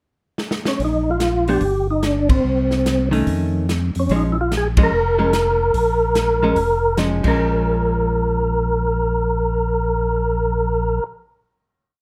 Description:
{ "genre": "soul jazz organ trio", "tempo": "145 BPM", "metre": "4/4", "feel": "swing 64% on 8ths", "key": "Bb minor", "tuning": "A4 = 437 Hz", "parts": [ { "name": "swinging big-band drum kit", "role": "drums", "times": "0.4-7.3 s", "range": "crash cymbal, hi-hat, kick drum, ride cymbal, snare drum", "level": "-25 LUFS", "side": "equal", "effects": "none" }, { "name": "percussive tonewheel organ", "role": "melody", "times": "0.7-11.0 s", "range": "C4 to Bb4", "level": "-21 LUFS", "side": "equal", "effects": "chorus vibrato, fast rotary speaker" }, { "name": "tonewheel organ", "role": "bass", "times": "0.8-11.0 s", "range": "F1 to F2", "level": "-24 LUFS", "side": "equal", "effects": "slow rotary speaker" }, { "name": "archtop guitar, miked and amplified", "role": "accompaniment", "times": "1.5-11.1 s", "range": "Eb3 to D4", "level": "-25 LUFS", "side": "equal", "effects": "none" } ], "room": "light reverb", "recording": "none", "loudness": "-19 LUFS", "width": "mono", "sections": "0.0-0.8 pickup bar; 0.8-7.4 A section; 7.4-10.7 final hit", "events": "drum fill 0.4-0.8; band accent 2.3, 4.7", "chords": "0.0 N.C.; 0.8 Bb5; 1.6 Cmadd9/G; 2.5 Cm6; 3.3 Faug7; 4.1 Bbm7", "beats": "0.40 | 0.81 1.22 1.64 2.05 | 2.46 2.87 3.28 3.69 | 4.10 4.51 4.93 5.34 | 5.75 6.17 6.58 7.00 | 7.41 7.83 8.24 8.65 | 9.07 9.49 9.90 10.32" }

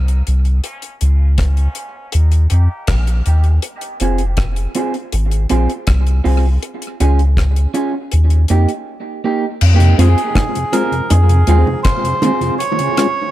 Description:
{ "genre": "dub reggae", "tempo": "80 BPM", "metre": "4/4", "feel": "straight", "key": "F minor", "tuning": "A4 = 440 Hz", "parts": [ { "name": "soft dub sub bass", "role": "bass", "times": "0.0-11.6 s", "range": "F1 to F2", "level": "-12 LUFS", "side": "equal", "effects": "none" }, { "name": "deep reggae drum kit", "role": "drums", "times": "0.1-13.2 s", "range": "crash cymbal, hi-hat, kick drum, rim click", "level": "-20 LUFS", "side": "left 1 dB", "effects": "none" }, { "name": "electric guitar at the edge of break-up", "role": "accompaniment", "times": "0.3-12.6 s", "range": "Bb3 to Ab4", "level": "-20 LUFS", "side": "right 3 dB", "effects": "high-pass filter, low-pass filter, tape echo" }, { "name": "muted trombone section", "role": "second line", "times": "0.6-3.2 s", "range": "Ab2 to G4", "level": "-37 LUFS", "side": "equal", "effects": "high-pass filter, tape echo" }, { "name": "mellow tonewheel organ", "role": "accompaniment", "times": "9.8-13.1 s", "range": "F2 to F4", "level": "-20 LUFS", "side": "left 2 dB", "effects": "stopped rotary speaker, high-pass filter, tape echo" }, { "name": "melodica", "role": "melody", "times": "10.0-13.3 s", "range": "Ab4 to Db5", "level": "-19 LUFS", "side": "right 2 dB", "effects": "tape echo" }, { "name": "bongos", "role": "percussion", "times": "10.4-12.4 s", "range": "none", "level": "-24 LUFS", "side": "right 2 dB", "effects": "high-pass filter on perc, tape echo" } ], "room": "small room ambience", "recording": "echo-heavy mix", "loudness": "-12 LUFS", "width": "side -14 dB against mid", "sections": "0.0-9.6 A section; 9.6-13.3 B section", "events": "filter sweep 0.0-3.6; break 8.9-9.6", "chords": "0.0 Fm; 0.6 Db; 2.1 Eb; 3.6 Fm; 6.6 Db; 8.1 Eb; 9.6 Fm; 12.6 Db", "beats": "| 0.64 1.39 2.13 2.88 | 3.63 4.38 5.13 5.87 | 6.62 7.37 8.12 8.86 | 9.61 10.36 11.10 11.85 | 12.59" }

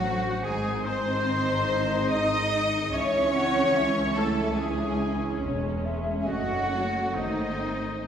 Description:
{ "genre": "classical", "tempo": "72 BPM", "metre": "3/4", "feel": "rubato", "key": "C# minor", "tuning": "A4 = 440 Hz", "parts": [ { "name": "warm studio violin section", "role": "melody", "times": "0.0-8.1 s", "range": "D#5 to D#6", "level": "-36 LUFS", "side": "left 3 dB", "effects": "none" }, { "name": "clear oboe", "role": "second line", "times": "0.0-8.1 s", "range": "D#4 to D#5", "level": "-34 LUFS", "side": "equal", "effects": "none" }, { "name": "mellow hollow silver concert flute", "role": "second line", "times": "0.0-8.1 s", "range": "B#4 to F#5", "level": "-34 LUFS", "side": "equal", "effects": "none" }, { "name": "rich studio violin section", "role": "second line", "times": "0.0-8.1 s", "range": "D#4 to D#5", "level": "-32 LUFS", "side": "left 2 dB", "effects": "none" }, { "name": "clear symphonic viola section", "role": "accompaniment", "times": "0.0-8.1 s", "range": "D#3 to D#4", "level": "-35 LUFS", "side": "right 1 dB", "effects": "none" }, { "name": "dark French horn section", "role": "sustained chords", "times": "0.0-8.1 s", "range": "G#3 to F#4", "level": "-34 LUFS", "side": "equal", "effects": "none" }, { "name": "warm trumpet section", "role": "stabs", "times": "0.0-8.1 s", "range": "D#4 to D#5", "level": "-31 LUFS", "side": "equal", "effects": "none" }, { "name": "clear chamber double bass section", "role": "bass", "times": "0.0-8.1 s", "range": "E1 to C#2", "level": "-33 LUFS", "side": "right 1 dB", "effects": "none" }, { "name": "rich symphonic cello section", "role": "bass", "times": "0.0-8.1 s", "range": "D#3 to D#4", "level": "-32 LUFS", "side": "right 2 dB", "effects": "none" } ], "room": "wet scoring stage reverb, RT60 1.8 s", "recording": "heard from further back in the room", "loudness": "-24 LUFS", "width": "side -8 dB against mid", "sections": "0.0-8.1 A section", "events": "none", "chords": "0.4 G#; 2.9 C#m; 5.4 C#m/E; 6.3 F#m; 7.2 G#", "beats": "| 0.44 1.27 2.10 | 2.93 3.75 4.59 | 5.42 6.28 7.16" }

